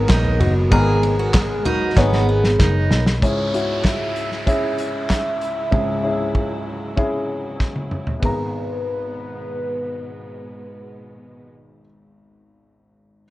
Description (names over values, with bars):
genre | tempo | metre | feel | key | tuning
piano-driven pop | 96 BPM | 4/4 | straight | G# minor | A4 = 439 Hz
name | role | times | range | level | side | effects
soft octave-layered synth lead | melody | 0.0-11.5 s | F#4 to E5 | -25 LUFS | equal | chorus, phaser, plate reverb
warm baby grand piano | accompaniment | 0.0-13.3 s | G#1 to A#5 | -24 LUFS | left 2 dB | plate reverb
warm studio string section | sustained chords | 0.0-11.5 s | B2 to A#4 | -32 LUFS | right 2 dB | plate reverb
vintage muted picked electric bass | bass | 0.0-3.2 s | F#1 to B1 | -19 LUFS | equal | none
picked steel-string acoustic guitar | riff | 0.1-3.0 s | B3 to G#4 | -25 LUFS | right 3 dB | none
loose indie drum kit | drums | 0.1-8.4 s | handclaps, hi-hat, kick drum, ride cymbal, snare drum, toms | -20 LUFS | equal | none
downlifter | sound effects | 3.2-8.2 s | none | -34 LUFS | equal | none
room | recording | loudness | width
light reverb | worn, warbling old tape, cassette tape, warbly pitch drift | -17 LUFS | side -16 dB against mid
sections
0.0-3.2 A section; 3.2-8.2 B section; 8.2-10.7 C section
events
drum fill 2.0-3.2, 7.6-8.2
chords
0.0 G#madd9; 3.2 C#m; 8.2 G#madd9